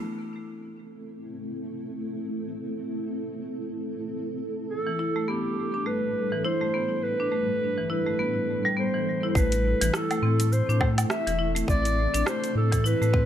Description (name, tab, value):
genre	organic downtempo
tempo	103 BPM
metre	4/4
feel	swing 58% on 16ths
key	A minor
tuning	A4 = 440 Hz
part	granular cloud pad	sustained chords	0.5-13.3 s	A2 to A4	-32 LUFS	equal	built-in reverb, sidechain pumping
part	marimba with hard mallets	arpeggios	0.0, 4.9-13.3 s	E3 to E4	-29 LUFS	left 1 dB	vintage 12-bit sampler grit, digital delay
part	mellow clarinet	melody	4.7-13.3 s	G4 to E5	-28 LUFS	equal	digital delay
part	warm sub bass	bass	9.4-13.3 s	E1 to A2	-24 LUFS	equal	none
part	afro-pop drum kit	drums	9.4-13.1 s	hi-hat, rim click, shaker, woodblock	-32 LUFS	right 1 dB	small room reverb
part	electronic kick drum	drums	9.4-13.3 s	none	-26 LUFS	equal	small room reverb
room	light reverb, digital ambience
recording	none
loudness	-24 LUFS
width	side -10 dB against mid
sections	0.0-9.4 A section; 9.4-13.3 B section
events	filter sweep on ambient pad 0.0-9.4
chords	0.0 Am; 4.7 G/A; 9.4 Amadd9